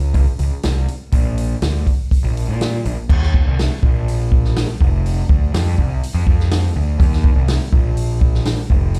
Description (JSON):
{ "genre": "classic rock", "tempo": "123 BPM", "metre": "4/4", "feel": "straight", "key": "unclear", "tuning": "A4 = 440 Hz", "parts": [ { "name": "fuzz picked electric bass", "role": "bass", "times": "0.0-9.0 s", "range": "F1 to Bb2", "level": "-20 LUFS", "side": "equal", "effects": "overdrive" }, { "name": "vintage drum kit", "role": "drums", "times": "0.1-9.0 s", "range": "crash cymbal, hi-hat, kick drum, snare drum", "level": "-19 LUFS", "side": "equal", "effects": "none" } ], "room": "little or no reverb", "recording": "live gig heard through the venue's PA, club reverb", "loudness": "-17 LUFS", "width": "mono", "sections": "0.0-3.1 A section; 3.1-9.0 B section", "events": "none", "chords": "none" }